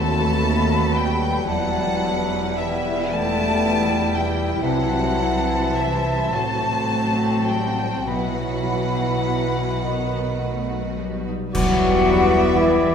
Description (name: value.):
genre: classical, slow romantic movement for symphony orchestra.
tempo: 33-40 BPM (dotted quarters).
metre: 6/8.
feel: rubato.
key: E minor.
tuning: A4 = 440 Hz.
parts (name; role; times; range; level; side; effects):
clear studio violin section; melody; 0.0-12.9 s; E5 to A5; -27 LUFS; left 1 dB; none.
concert flute; second line; 0.0-12.9 s; E5 to B5; -27 LUFS; left 2 dB; none.
mellow clarinet; second line; 0.0-12.9 s; B3 to F#4; -28 LUFS; left 4 dB; none.
warm studio violin section; second line; 0.0-12.9 s; E4 to C5; -32 LUFS; left 1 dB; none.
warm bassoon; accompaniment; 0.0-12.9 s; D#3 to B3; -28 LUFS; right 2 dB; none.
warm studio viola section; accompaniment; 0.0-12.9 s; F#3 to F#4; -30 LUFS; right 2 dB; none.
mellow French horn section; sustained chords; 0.0-12.9 s; E3 to E4; -27 LUFS; left 4 dB; none.
concert harp; arpeggios; 0.0-12.9 s; A2 to E5; -30 LUFS; left 6 dB; none.
rich studio cello section; bass; 0.0-12.9 s; D#2 to F#3; -27 LUFS; right 3 dB; none.
rich studio double bass section; bass; 0.0-12.9 s; E1 to E2; -28 LUFS; right 3 dB; none.
clear oboe; second line; 11.5-12.9 s; D5; -28 LUFS; right 2 dB; none.
clash cymbals and concert bass drum; percussion; 11.5-12.9 s; none; -26 LUFS; right 1 dB; none.
clear trombone section; sustained chords; 11.6-12.9 s; G3 to B3; -27 LUFS; right 4 dB; none.
room: wet concert hall reverb, RT60 2.2 s.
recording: minimal, uncompressed stereo recording.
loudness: -18 LUFS.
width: side -7 dB against mid.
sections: 0.0-11.5 A section; 11.5-12.9 B section.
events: band accent 11.5-12.6.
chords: 0.0 B7/D#; 1.5 Em; 4.6 C; 6.3 F#dim/A; 8.1 Bsus4; 9.8 B; 11.5 Em.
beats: | 1.45 3.10 | 4.62 6.35 | 8.08 9.83 | 11.54.